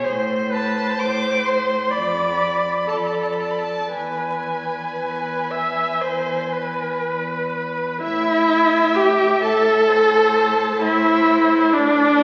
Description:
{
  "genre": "classical, slow romantic movement for string quartet",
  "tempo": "56-66 BPM",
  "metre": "4/4",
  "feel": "rubato",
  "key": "A minor",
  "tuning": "A4 = 440 Hz",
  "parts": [
    { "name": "rich violin", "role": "second line", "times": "0.0-12.2 s", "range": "B4 to E5", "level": "-30 LUFS", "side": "equal", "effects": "none" },
    { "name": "rich viola", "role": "accompaniment", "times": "0.0-12.2 s", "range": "D4 to E5", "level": "-21 LUFS", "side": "equal", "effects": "none" },
    { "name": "rich cello", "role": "bass", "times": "0.1-12.2 s", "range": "E2 to A2", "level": "-31 LUFS", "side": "equal", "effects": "none" },
    { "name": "rich violin", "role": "melody", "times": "0.5-12.2 s", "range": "D5 to D6", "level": "-29 LUFS", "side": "equal", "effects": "none" }
  ],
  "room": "wet recital hall reverb, RT60 1.4 s",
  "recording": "very old 78 rpm record, vinyl crackle",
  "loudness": "-20 LUFS",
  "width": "mono",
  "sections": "0.0-8.0 A section; 8.0-12.2 B section",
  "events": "none",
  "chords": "0.1 Am; 1.9 Dm/F; 3.9 E; 8.0 Am; 11.7 Asus4",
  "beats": "| 0.07 1.00 1.93 2.90 | 3.93 4.99 6.01 7.02 | 8.02 8.96 9.89 10.82 | 11.73"
}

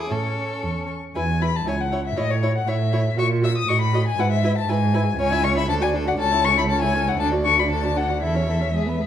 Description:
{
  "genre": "quick classical-period movement for string quartet",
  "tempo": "119 BPM",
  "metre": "2/4",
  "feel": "straight",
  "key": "E major, A major from 5.2 s",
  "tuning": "A4 = 440 Hz",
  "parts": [
    { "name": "rich violin", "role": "melody", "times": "0.0-9.0 s", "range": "C#5 to E6", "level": "-23 LUFS", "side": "left 8 dB", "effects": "none" },
    { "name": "rich violin", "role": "second line", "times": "0.0-9.1 s", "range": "G#4 to E5", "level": "-30 LUFS", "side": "left 1 dB", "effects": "none" },
    { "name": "warm viola", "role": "accompaniment", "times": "0.0-9.1 s", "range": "G#3 to F#4", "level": "-28 LUFS", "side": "right 3 dB", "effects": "none" },
    { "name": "rich cello", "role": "bass", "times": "0.0-9.1 s", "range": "C#2 to A#2", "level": "-23 LUFS", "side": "right 2 dB", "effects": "none" }
  ],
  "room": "moderate recital hall reverb, RT60 1.3 s",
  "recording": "dark, warm production",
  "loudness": "-19 LUFS",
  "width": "side -10 dB against mid",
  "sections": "0.0-1.2 A section; 1.2-9.1 B section",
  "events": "none",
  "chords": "0.1 A; 1.2 E; 1.7 C#m; 2.2 A; 3.2 F#7/A#; 3.7 B7/A; 4.2 E/G#; 5.2 C#m; 5.7 D; 6.2 A/C#; 7.2 D; 8.2 A/E",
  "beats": "| 0.11 0.63 | 1.15 1.66 | 2.17 2.67 | 3.18 3.68 | 4.19 4.69 | 5.19 5.69 | 6.19 6.69 | 7.20 7.71 | 8.22 8.74"
}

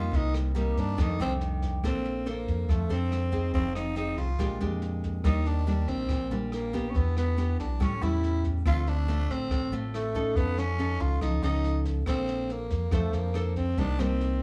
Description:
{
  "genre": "bossa nova",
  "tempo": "141 BPM",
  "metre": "4/4",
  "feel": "straight",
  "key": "Bb major",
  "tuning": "A4 = 440 Hz",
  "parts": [
    { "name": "growling tenor saxophone", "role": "melody", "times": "0.0-14.4 s", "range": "G3 to F4", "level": "-34 LUFS", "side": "equal", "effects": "none" },
    { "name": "nylon-string guitar", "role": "accompaniment", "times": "0.0-14.4 s", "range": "F2 to C5", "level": "-35 LUFS", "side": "equal", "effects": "none" },
    { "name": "vibraphone with medium hard mallets", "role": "accompaniment", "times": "0.0-2.0 s", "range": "G5 to D6", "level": "-42 LUFS", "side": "equal", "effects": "none" },
    { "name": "deep dub fingered electric bass", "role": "bass", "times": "0.0-14.4 s", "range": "F1 to G2", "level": "-31 LUFS", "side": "equal", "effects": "none" },
    { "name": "jazz brush drum kit", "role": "drums", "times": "0.1-14.3 s", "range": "kick drum, rim click, snare drum", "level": "-36 LUFS", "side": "equal", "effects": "none" }
  ],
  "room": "light reverb",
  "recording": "small room ambience",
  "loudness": "-28 LUFS",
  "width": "mono",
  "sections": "0.0-1.8 A section; 1.8-14.4 B section",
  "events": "tenor saxophone solo 0.0-1.8",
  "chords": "0.1 Cm7; 1.0 F13; 1.8 Bbmaj9; 3.5 Fm7; 4.4 Bb6; 5.2 Ebmaj7; 6.9 Em7; 7.8 A7; 8.7 Dm7; 10.4 Faug7; 12.1 Bbmaj9; 13.8 Cm7",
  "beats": "| 0.12 0.55 0.98 1.40 | 1.83 2.25 2.68 3.11 | 3.54 3.96 4.39 4.81 | 5.24 5.67 6.09 6.52 | 6.95 7.37 7.80 8.23 | 8.65 9.08 9.51 9.93 | 10.36 10.79 11.21 11.64 | 12.06 12.49 12.92 13.35 | 13.77 14.20"
}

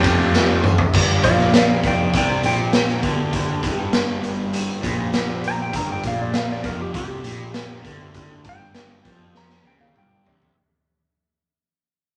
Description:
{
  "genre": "psychedelic rock",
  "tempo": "100 BPM",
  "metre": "4/4",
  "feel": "straight",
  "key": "unclear",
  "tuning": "A4 = 441 Hz",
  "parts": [
    { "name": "clean lap steel guitar", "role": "melody", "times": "0.0-10.6 s", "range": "G4 to Bb5", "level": "-27 LUFS", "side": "equal", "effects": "none" },
    { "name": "combo organ", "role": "sustained chords", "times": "0.0-10.5 s", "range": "G3 to F5", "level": "-36 LUFS", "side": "equal", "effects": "none" },
    { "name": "crunchy overdriven guitar", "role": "riff", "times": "0.0-10.5 s", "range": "F2 to F4", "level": "-28 LUFS", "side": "equal", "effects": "phaser" },
    { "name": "fuzz picked electric bass", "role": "bass", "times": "0.0-10.5 s", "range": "F1 to F2", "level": "-28 LUFS", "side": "equal", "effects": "overdrive" },
    { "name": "raw garage drum kit", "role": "drums", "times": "0.0-10.6 s", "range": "crash cymbal, hi-hat, kick drum, ride cymbal, snare drum, toms", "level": "-23 LUFS", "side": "equal", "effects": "none" },
    { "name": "tambourine", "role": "percussion", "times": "0.0-5.3 s", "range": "none", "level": "-43 LUFS", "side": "equal", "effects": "none" }
  ],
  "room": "moderate large studio reverb, RT60 1.4 s",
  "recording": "none",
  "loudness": "-20 LUFS",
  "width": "mono",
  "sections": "0.9-10.6 A section",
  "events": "drum fill 0.3-0.9, 9.3-10.6; fade-out 0.9-10.6; electric slide guitar solo 0.9-10.6",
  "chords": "0.0 Fadd9; 0.9 G",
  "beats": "0.32 | 0.92 1.52 2.12 2.72 | 3.32 3.92 4.52 5.13 | 5.73 6.33 6.93 7.54 | 8.14 8.74 9.35 9.95"
}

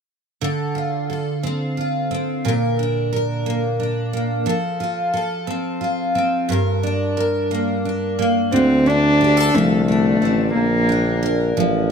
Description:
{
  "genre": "pop",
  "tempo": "59 BPM (dotted quarters)",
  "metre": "6/8",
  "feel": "straight",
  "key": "D minor",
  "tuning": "A4 = 439 Hz",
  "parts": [
    { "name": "picked steel-string acoustic guitar", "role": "accompaniment", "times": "0.4-11.9 s", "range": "G2 to Bb4", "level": "-20 LUFS", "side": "right 1 dB", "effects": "double-tracked left and right" },
    { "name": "warm cello", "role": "melody", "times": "8.5-11.3 s", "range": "A3 to D4", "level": "-17 LUFS", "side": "left 1 dB", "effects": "digital delay" },
    { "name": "clear tuba", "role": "bass", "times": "8.5-11.9 s", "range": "A1 to D2", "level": "-20 LUFS", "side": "equal", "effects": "none" }
  ],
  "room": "light reverb",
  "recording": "none",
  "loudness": "-17 LUFS",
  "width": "side -6 dB against mid",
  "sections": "0.4-8.5 A section; 8.5-11.9 B section",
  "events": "none",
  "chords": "0.4 Dm7; 2.5 Bb; 4.5 F; 6.5 Gm; 8.5 Dm7; 10.6 Bb",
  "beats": "| 0.41 1.44 | 2.45 3.46 | 4.47 5.48 | 6.49 7.51 | 8.53 9.54 | 10.55 11.56"
}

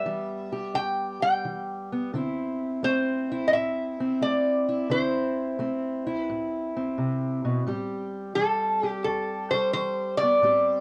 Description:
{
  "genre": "acoustic country blues, solo or duo",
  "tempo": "87 BPM",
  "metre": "4/4",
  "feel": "swing 68% on 8ths",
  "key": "A minor",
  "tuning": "A4 = 440 Hz",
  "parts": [
    { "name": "lap resonator guitar", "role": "melody", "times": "0.0-10.8 s", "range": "A4 to G5", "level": "-27 LUFS", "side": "equal", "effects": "none" },
    { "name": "fingerpicked steel-string acoustic guitar", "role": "accompaniment", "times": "0.0-10.8 s", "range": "E2 to G4", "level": "-31 LUFS", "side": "equal", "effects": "cassette tape" }
  ],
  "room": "moderate booth ambience, RT60 0.2 s",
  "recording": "home recording on cassette, faint mains hum",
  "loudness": "-27 LUFS",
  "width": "mono",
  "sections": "0.0-10.8 A section",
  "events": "none",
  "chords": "0.0 A7sus2 (rootless); 2.1 Dsus2; 7.7 Am7",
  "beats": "0.07 0.76 1.45 | 2.14 2.83 3.52 4.21 | 4.90 5.59 6.28 6.97 | 7.66 8.35 9.04 9.72 | 10.41"
}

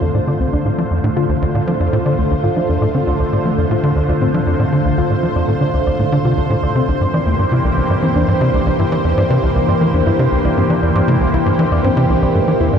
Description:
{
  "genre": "ambient, sequencer-driven space music",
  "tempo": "118 BPM",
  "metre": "4/4",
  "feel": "straight",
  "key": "D minor",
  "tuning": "A4 = 441 Hz",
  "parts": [
    { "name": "lush unison pad", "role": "sustained chords", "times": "0.0-12.8 s", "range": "D3 to C5", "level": "-17 LUFS", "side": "equal", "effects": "chorus, phaser" },
    { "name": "soft round pluck", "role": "arpeggios", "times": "0.0-12.8 s", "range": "A3 to D5", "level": "-22 LUFS", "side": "left 2 dB", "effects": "chorus, auto-pan, tape echo" },
    { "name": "tight sequencer bass", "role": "riff", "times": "0.0-12.8 s", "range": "C2 to F3", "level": "-16 LUFS", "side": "equal", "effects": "tape echo" }
  ],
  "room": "wet cathedral reverb, RT60 6.2 s",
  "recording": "dreamy mix soaked in reverb",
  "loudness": "-13 LUFS",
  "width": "side -7 dB against mid",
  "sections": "0.0-12.8 A section",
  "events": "none",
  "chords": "0.0 Dm7; 6.9 C7",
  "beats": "0.27 | 0.78 1.29 1.80 2.31 | 2.82 3.33 3.83 4.34 | 4.85 5.36 5.87 6.38 | 6.88 7.39 7.90 8.41 | 8.92 9.43 9.94 10.44 | 10.95 11.46 11.97 12.48"
}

